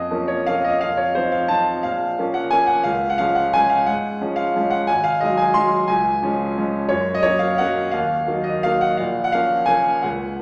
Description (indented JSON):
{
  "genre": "classical, piano waltz",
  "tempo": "176 BPM",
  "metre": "3/4",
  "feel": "uneven beats, rubato",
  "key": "Bb minor",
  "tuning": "A4 = 440 Hz",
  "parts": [
    { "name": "clear concert grand piano", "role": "solo", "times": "0.0-10.4 s", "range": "Ab1 to C6", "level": "-20 LUFS", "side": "equal", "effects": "none" }
  ],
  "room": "wet recital hall reverb, RT60 1.8 s",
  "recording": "none",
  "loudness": "-20 LUFS",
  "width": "mono",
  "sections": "0.0-10.4 A section",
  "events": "none",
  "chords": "0.0 Bbm; 0.8 F7; 1.8 Bbm; 2.9 Db; 4.9 Ab7; 5.9 Db; 6.9 Gb; 7.9 Ebm; 9.0 Bbm"
}